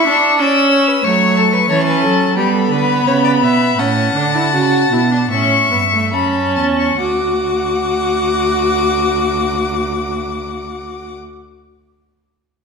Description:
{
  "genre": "classical, baroque-style fugue for string quartet",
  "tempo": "67-93 BPM",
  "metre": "4/4",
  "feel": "straight",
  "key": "D major",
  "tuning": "A4 = 440 Hz",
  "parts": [
    { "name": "rich violin", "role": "melody", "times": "0.0-11.2 s", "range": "A5 to E6", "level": "-18 LUFS", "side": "left 6 dB", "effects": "none" },
    { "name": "rich violin", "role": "second line", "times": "0.0-11.2 s", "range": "G4 to A5", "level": "-22 LUFS", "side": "left 3 dB", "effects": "none" },
    { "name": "rich viola", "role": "accompaniment", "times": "0.0-11.2 s", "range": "A3 to F#4", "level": "-17 LUFS", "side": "right 1 dB", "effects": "none" },
    { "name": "warm cello", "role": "bass", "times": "1.0-11.2 s", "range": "D2 to G3", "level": "-19 LUFS", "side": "right 5 dB", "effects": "none" }
  ],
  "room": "wet scoring stage reverb, RT60 1.5 s",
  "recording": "minimal, uncompressed stereo recording",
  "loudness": "-12 LUFS",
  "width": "side -5 dB against mid",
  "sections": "0.0-7.0 A section; 7.0-10.5 B section",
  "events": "slowing down 0.0-7.0",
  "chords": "0.0 C#m; 1.0 F#m; 2.4 G; 3.8 D/A; 5.3 A7; 7.0 D"
}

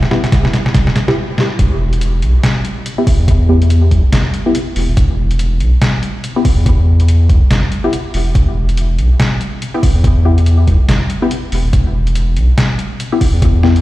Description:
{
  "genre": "deep dubstep",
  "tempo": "142 BPM",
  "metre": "4/4",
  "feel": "swing 59% on 16ths, half-time",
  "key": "E minor",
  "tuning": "A4 = 444 Hz",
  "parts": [
    { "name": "trip hop sampler-style drum kit", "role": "drums", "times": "0.0-13.8 s", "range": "hi-hat, snare drum", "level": "-18 LUFS", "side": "equal", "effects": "small room ambience" },
    { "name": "filtered dub chord stab", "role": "stabs", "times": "0.1-13.7 s", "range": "B3 to G4", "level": "-20 LUFS", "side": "left 2 dB", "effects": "chorus, phaser, dub echo" },
    { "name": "electronic kick drum", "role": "drums", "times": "0.3-13.5 s", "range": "none", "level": "-13 LUFS", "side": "equal", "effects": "small room ambience" },
    { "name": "saturated sub bass", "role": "bass", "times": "1.6-13.8 s", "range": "E1 to E2", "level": "-11 LUFS", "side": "equal", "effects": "none" }
  ],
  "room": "light reverb, digital ambience",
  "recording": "played on a big sound system in a bare room, large studio reverb",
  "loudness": "-11 LUFS",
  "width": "side -17 dB against mid",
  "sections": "0.0-1.6 A section; 1.6-13.8 B section",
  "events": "build-up 0.0-1.6; drum fill 0.0-1.2, 1.4; filter sweep on synth stab 0.0-1.6; stop 1.2-1.6; drop 1.6-13.8",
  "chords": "0.0 Em; 1.6 N.C."
}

